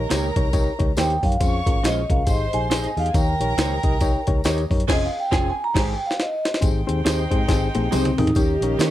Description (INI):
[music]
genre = uptempo 1960s-style soul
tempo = 138 BPM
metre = 4/4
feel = swing 60% on 8ths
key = unclear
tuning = A4 = 442 Hz
[part]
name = warm chamber violin section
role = second line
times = 0.0-8.9 s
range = Bb3 to Db6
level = -31 LUFS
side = right 2 dB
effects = plate reverb
[part]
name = mellow reed electric piano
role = accompaniment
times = 0.0-8.9 s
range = Ab2 to Eb5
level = -26 LUFS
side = left 5 dB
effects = fast tremolo, tube saturation, plate reverb
[part]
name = vintage muted fingered electric bass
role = bass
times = 0.0-8.9 s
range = F1 to Eb3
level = -25 LUFS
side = equal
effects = none
[part]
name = electric guitar through a small old amp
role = stabs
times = 0.1-8.9 s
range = Ab3 to Db5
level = -30 LUFS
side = right 9 dB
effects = analog chorus
[part]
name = jungle sampler-style drum kit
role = drums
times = 0.1-8.9 s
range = crash cymbal, hi-hat, kick drum, snare drum, toms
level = -22 LUFS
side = equal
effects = none
[part]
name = tambourine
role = percussion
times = 0.1-8.9 s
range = none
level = -37 LUFS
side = left 3 dB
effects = none
[part]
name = vibraphone with soft mallets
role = melody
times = 1.0-8.9 s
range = C4 to Bb5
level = -25 LUFS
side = right 1 dB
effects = plate reverb
[sound]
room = light reverb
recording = dark, warm production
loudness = -18 LUFS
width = side -13 dB against mid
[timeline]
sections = 0.0-6.6 A section; 6.6-8.4 B section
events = vibraphone solo 0.0-6.6; band accent 4.9-6.6; drum fill 5.8-6.6, 7.5-8.4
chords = 0.0 Eb7; 1.4 Dbmaj7; 2.3 Abmaj7; 3.1 Eb7; 4.9 Dbmaj7/F; 5.8 Abmaj7; 8.4 Eb7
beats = 0.10 0.54 0.97 | 1.41 1.84 2.28 2.71 | 3.15 3.58 4.02 4.45 | 4.89 5.32 5.76 6.19 | 6.63 7.06 7.49 7.93 | 8.36 8.79